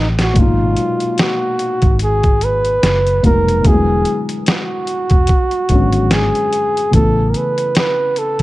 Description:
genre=lo-fi hip hop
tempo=73 BPM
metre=4/4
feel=swing 57% on 16ths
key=unclear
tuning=A4 = 441 Hz
part: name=breathy flugelhorn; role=melody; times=0.0-8.4 s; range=E#4 to B4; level=-17 LUFS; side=right 1 dB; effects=tape echo
part: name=felt-muted upright piano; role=accompaniment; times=0.0-8.4 s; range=A#2 to E#4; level=-20 LUFS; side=left 2 dB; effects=cassette tape
part: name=vintage muted fingered electric bass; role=bass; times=0.0-8.4 s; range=E1 to A1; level=-17 LUFS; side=equal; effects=none
part: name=boom bap sampler-style drum kit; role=drums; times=0.2-8.4 s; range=hi-hat, kick drum, snare drum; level=-16 LUFS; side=equal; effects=none
room=light reverb, small room ambience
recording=none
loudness=-12 LUFS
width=side -18 dB against mid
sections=0.4-8.4 A section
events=drum fill 0.0-0.4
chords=0.4 G#m9; 3.6 E7; 6.9 Aadd9

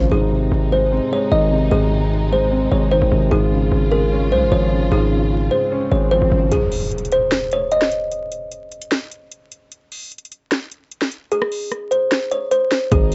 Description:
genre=hip hop, trap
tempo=150 BPM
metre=4/4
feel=half-time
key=Ab major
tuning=A4 = 439 Hz
part: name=dark concert grand piano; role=accompaniment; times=0.0-6.5 s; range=Ab2 to Db4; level=-24 LUFS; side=equal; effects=none
part: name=warm symphonic string section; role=sustained chords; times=0.0-6.5, 12.9-13.1 s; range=C3 to F4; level=-30 LUFS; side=equal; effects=none
part: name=hard-hitting 808-style bass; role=bass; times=0.0-6.5, 12.9-13.1 s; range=Ab1 to C2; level=-20 LUFS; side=equal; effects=none
part: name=kalimba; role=melody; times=0.1-8.1, 11.3-13.1 s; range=Ab4 to Eb5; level=-22 LUFS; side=equal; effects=cassette tape
part: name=swell and impact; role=sound effects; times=5.6-8.1 s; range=none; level=-31 LUFS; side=equal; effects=none
part: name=trap drum kit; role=drums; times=6.5-13.1 s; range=hi-hat, kick drum, rim click, snare drum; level=-24 LUFS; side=equal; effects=none
room=little or no reverb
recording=home recording on cassette, vinyl crackle, nothing above 7.8 kHz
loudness=-18 LUFS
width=mono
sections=0.1-6.5 A section; 6.5-13.1 B section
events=swell 5.6-6.5; break 6.5-12.9; impact 6.5-8.1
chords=0.1 Ab; 3.3 Db/Ab; 6.5 N.C.

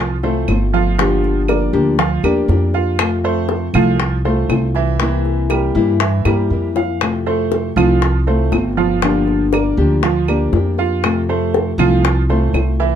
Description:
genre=latin, Cuban son and guajira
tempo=119 BPM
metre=4/4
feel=straight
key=F major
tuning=A4 = 443 Hz
part: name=nylon-string guitar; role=accompaniment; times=0.0-13.0 s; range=C3 to G4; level=-19 LUFS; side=left 5 dB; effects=none
part: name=bright baby grand piano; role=arpeggios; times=0.0-13.0 s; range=E3 to F5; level=-20 LUFS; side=right 7 dB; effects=none
part: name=upright bass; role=bass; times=0.0-13.0 s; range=G1 to G2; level=-18 LUFS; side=equal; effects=none
part: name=bongos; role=percussion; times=0.2-13.0 s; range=none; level=-21 LUFS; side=left 6 dB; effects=none
part: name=claves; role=percussion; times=0.5-12.8 s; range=none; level=-26 LUFS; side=right 4 dB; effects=none
room=moderate studio reverb, RT60 0.5 s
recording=dark, warm production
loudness=-14 LUFS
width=side -9 dB against mid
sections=0.0-13.0 A section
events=drum fill 6.3-7.0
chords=0.0 Fmaj7; 1.0 Gm7; 3.0 Fmaj7; 5.0 C7; 7.0 Fmaj7; 9.0 Gm7; 11.0 Fmaj7

